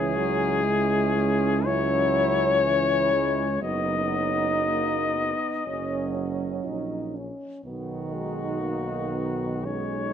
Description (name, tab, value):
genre	classical, hymn-like piece for brass band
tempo	56-63 BPM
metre	4/4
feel	rubato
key	B major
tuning	A4 = 439 Hz
part	mellow flugelhorn	melody	0.0-10.1 s	F#4 to D#5	-26 LUFS	left 6 dB	none
part	warm French horn section	second line	0.0-10.1 s	C#4 to E4	-31 LUFS	right 10 dB	none
part	clear euphonium	accompaniment	0.0-10.1 s	G#3 to F#4	-33 LUFS	left 1 dB	none
part	warm euphonium	accompaniment	0.0-10.1 s	D#3 to G#3	-32 LUFS	right 6 dB	none
part	warm tuba	bass	0.0-10.1 s	F#1 to C#2	-31 LUFS	equal	none
room	light reverb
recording	close, detailed microphones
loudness	-23 LUFS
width	side -8 dB against mid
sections	0.0-10.1 A section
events	none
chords	0.0 C#m; 3.6 B/F#; 5.7 F#; 7.6 B